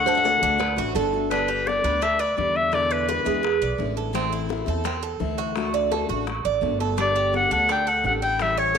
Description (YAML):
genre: latin, Cuban son and guajira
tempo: 169 BPM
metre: 4/4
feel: straight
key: G major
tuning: A4 = 436 Hz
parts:
  - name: bright clarinet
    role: melody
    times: 0.0-4.0, 7.0-8.8 s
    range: B4 to G5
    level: -22 LUFS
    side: left 2 dB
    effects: none
  - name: picked steel-string acoustic guitar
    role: accompaniment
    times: 0.0-8.8 s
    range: B2 to G4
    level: -30 LUFS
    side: left 11 dB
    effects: none
  - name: Cuban tres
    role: arpeggios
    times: 0.0-8.8 s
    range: C4 to D5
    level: -27 LUFS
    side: right 11 dB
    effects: none
  - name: upright bass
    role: bass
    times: 0.0-8.8 s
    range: G1 to E2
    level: -30 LUFS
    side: right 1 dB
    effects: none
  - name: nylon-string guitar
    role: second line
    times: 0.1-1.3 s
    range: A4 to E5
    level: -30 LUFS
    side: right 11 dB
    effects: none
  - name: bongos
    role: percussion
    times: 0.1-8.8 s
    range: none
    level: -34 LUFS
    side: left 11 dB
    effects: none
room: wet spring reverb, RT60 1.6 s, small room reverb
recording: 1960s-style stereo with parts hard left and right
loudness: -20 LUFS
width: side -7 dB against mid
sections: 0.0-1.3 A section; 1.3-8.8 B section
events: none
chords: 0.0 D; 1.3 G; 2.7 E7; 4.1 Am; 5.6 D; 7.0 Gadd9